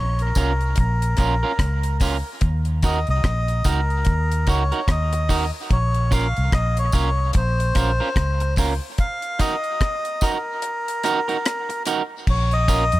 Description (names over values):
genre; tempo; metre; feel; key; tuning
dub reggae; 73 BPM; 4/4; swing 60% on 16ths; Bb minor; A4 = 440 Hz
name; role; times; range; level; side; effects
melodica; melody; 0.0-13.0 s; Bb4 to F5; -25 LUFS; left 1 dB; dub echo
vintage muted fingered electric bass; bass; 0.0-13.0 s; Bb1 to F2; -21 LUFS; equal; none
deep reggae drum kit; drums; 0.2-13.0 s; crash cymbal, hi-hat, kick drum, rim click; -22 LUFS; equal; none
electric guitar at the edge of break-up; accompaniment; 0.4-12.8 s; Db4 to Bb4; -27 LUFS; right 5 dB; dub echo
tambourine; percussion; 0.4-12.9 s; none; -36 LUFS; left 1 dB; dub echo
room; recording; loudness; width
light reverb, small room ambience; none; -19 LUFS; side -17 dB against mid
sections
0.0-12.3 A section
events
break 9.0-12.3; kick muted 10.6-12.3; part muted 12.3-13.0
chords
0.0 Bbm; 2.4 Ebm; 5.7 Bbm; 9.0 Ebm; 12.3 Bbm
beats
0.77 1.59 | 2.42 3.24 4.06 4.88 | 5.70 6.52 7.34 8.16 | 8.98 9.81 10.63 11.45 | 12.27